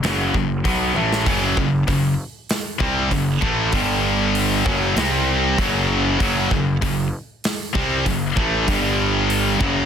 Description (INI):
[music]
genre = heavy metal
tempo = 97 BPM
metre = 4/4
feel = straight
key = unclear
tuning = A4 = 444 Hz
[part]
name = scooped high-gain guitar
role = riff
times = 0.0-9.9 s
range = F#2 to B#3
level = -22 LUFS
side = left 10 dB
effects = distortion
[part]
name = sludgy distorted guitar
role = riff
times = 0.0-9.9 s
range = F#2 to B#3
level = -23 LUFS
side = right 9 dB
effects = overdrive
[part]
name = fuzz picked electric bass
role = bass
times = 0.0-9.9 s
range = F#1 to B#1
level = -24 LUFS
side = equal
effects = overdrive
[part]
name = big rock drum kit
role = drums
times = 0.0-9.7 s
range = hi-hat, kick drum, snare drum, toms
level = -25 LUFS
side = equal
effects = none
[part]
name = heavy high-gain guitar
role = riff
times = 1.3-9.9 s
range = F#2 to B#3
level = -24 LUFS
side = equal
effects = distortion
[sound]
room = light reverb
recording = dense, heavily limited modern master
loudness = -17 LUFS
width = side -8 dB against mid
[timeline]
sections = 0.0-9.9 A section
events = drum fill 1.0-1.3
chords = 0.0 F#m; 3.7 G5; 4.7 F#5; 5.0 C5; 5.6 F#m; 8.7 G5